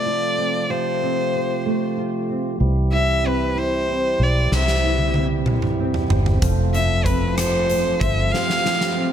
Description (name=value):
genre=six-eight pop ballad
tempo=63 BPM (dotted quarters)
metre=6/8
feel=straight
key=C major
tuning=A4 = 439 Hz
part: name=warm violin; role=melody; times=0.0-9.0 s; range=B4 to F5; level=-22 LUFS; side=left 1 dB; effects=tape echo
part: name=nylon-string guitar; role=accompaniment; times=0.0-9.1 s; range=C3 to C5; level=-25 LUFS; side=equal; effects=double-tracked left and right
part: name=tonewheel organ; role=sustained chords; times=0.0-9.1 s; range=C3 to A4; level=-27 LUFS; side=right 3 dB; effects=stopped rotary speaker
part: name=vintage muted fingered electric bass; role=bass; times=2.6-8.3 s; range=F1 to C2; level=-21 LUFS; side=equal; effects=none
part: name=huge arena drum kit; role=drums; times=4.5-9.0 s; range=hi-hat, kick drum, rim click, snare drum, toms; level=-23 LUFS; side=equal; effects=none
room=small room ambience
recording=none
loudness=-18 LUFS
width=side -9 dB against mid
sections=0.0-2.6 A section; 2.6-9.1 B section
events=drum fill 4.5-6.4, 8.3-9.1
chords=0.0 F; 2.6 C; 6.4 F